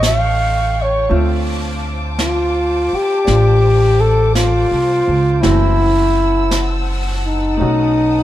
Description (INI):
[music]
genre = jazz ballad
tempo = 55 BPM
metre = 4/4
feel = swing 68% on 8ths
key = D minor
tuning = A4 = 440 Hz
[part]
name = mellow flugelhorn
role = melody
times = 0.0-8.2 s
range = Eb4 to E#5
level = -16 LUFS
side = left 1 dB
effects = none
[part]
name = clear grand piano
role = accompaniment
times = 0.0-8.2 s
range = E3 to E5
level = -23 LUFS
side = equal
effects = none
[part]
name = dark studio string section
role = sustained chords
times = 0.0-8.2 s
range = E#4 to E6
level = -26 LUFS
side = left 1 dB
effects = none
[part]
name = upright bass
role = bass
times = 0.0-8.2 s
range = F#1 to D2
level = -16 LUFS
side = equal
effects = none
[part]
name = jazz brush drum kit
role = drums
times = 0.0-8.2 s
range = brushed snare drum, hi-hat, snare drum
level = -25 LUFS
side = right 1 dB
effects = none
[sound]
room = light reverb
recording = heard from further back in the room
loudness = -13 LUFS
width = side -13 dB against mid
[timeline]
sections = 0.0-8.2 A section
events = none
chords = 0.0 Aaug7; 1.1 Dm7; 5.4 F#m7b5; 7.6 B7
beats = 0.03 | 1.11 2.19 3.28 4.36 | 5.44 6.52 7.61